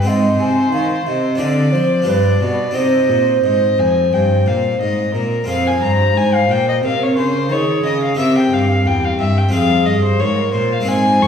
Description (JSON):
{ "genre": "classical, baroque-style sonata movement with continuo", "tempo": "89 BPM", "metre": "4/4", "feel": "straight", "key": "C minor, F minor from 5.5 s", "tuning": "A4 = 441 Hz", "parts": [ { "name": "dark violin", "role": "melody", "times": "0.0-11.3 s", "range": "Bb4 to Db6", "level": "-20 LUFS", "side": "left 4 dB", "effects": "none" }, { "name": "mellow hollow baroque flute", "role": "second line", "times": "0.0-11.3 s", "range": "G4 to Ab5", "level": "-18 LUFS", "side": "right 2 dB", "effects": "none" }, { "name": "harpsichord", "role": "accompaniment", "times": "0.0-11.3 s", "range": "E2 to Bb4", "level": "-21 LUFS", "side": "left 2 dB", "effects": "none" }, { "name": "rich cello", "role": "bass", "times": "0.0-11.3 s", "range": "E2 to F3", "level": "-18 LUFS", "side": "equal", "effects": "none" } ], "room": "wet recital hall reverb, RT60 1.4 s", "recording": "heard from further back in the room", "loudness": "-13 LUFS", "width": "side -7 dB against mid", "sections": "0.0-5.5 A section; 5.5-11.3 A section", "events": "none", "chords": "0.1 Ab; 1.4 Dm7b5; 2.1 G7; 2.8 Cm; 5.5 Fm; 8.2 C7; 9.5 Fm" }